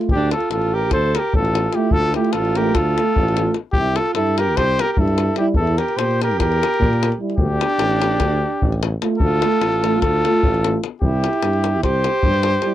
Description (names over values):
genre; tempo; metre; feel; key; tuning
balkan folk, Balkan brass band; 297 BPM (eighths); 9/8; straight; D minor; A4 = 440 Hz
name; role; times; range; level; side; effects
mellow French horn; accompaniment; 0.0-12.7 s; E4 to F4; -25 LUFS; left 4 dB; none
mellow euphonium; accompaniment; 0.0-12.7 s; G3 to A3; -22 LUFS; right 7 dB; none
davul; percussion; 0.0-12.7 s; none; -22 LUFS; left 2 dB; none
mellow trumpet; melody; 0.1-12.7 s; G4 to C5; -21 LUFS; left 3 dB; none
warm tuba; bass; 0.1-12.6 s; A1 to Bb2; -22 LUFS; equal; none
warm alto saxophone; second line; 0.2-12.7 s; D4 to A4; -23 LUFS; right 7 dB; none
room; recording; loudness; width
little or no reverb; dry, close 1970s-style studio recording; -16 LUFS; side -12 dB against mid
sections
0.1-12.7 A section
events
none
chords
0.1 Dm; 3.7 C; 5.6 Edim; 7.4 Dm; 11.0 C